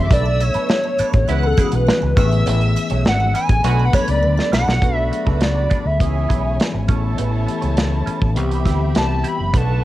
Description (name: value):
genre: lush 1970s-style soul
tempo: 102 BPM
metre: 4/4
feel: straight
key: B dorian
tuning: A4 = 438 Hz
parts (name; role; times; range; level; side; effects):
- hollow square lead; melody; 0.0-9.8 s; G#4 to B5; -21 LUFS; equal; chorus, cassette tape
- warm studio violin section; second line; 0.0-9.8 s; E4 to F#6; -29 LUFS; equal; cassette tape
- mellow tine electric piano; accompaniment; 0.0-9.8 s; E3 to A4; -25 LUFS; left 7 dB; wide subtle chorus, cassette tape
- overdriven fingered electric bass; bass; 0.0-9.8 s; F#1 to D2; -19 LUFS; equal; none
- electric guitar through a small old amp; riff; 0.1-9.7 s; C#4 to C#5; -31 LUFS; right 9 dB; wah, cassette tape
- modern studio drum kit; drums; 0.1-9.7 s; hi-hat, kick drum, snare drum; -19 LUFS; equal; cassette tape
- triangle; percussion; 0.1-4.8 s; none; -40 LUFS; right 12 dB; none
- warm horn section; stabs; 1.3-9.8 s; B3 to B4; -30 LUFS; right 9 dB; cassette tape
room: light reverb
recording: home recording on cassette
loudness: -15 LUFS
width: side -15 dB against mid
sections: 0.0-4.8 A section; 4.8-9.8 B section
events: analog synth lead solo 0.0-4.8; drum fill 4.2-4.8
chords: 0.1 Bm7; 1.3 C#m7; 2.2 Amaj9; 3.6 Bm7; 6.0 C#m7; 6.9 Amaj9; 8.4 Cmaj7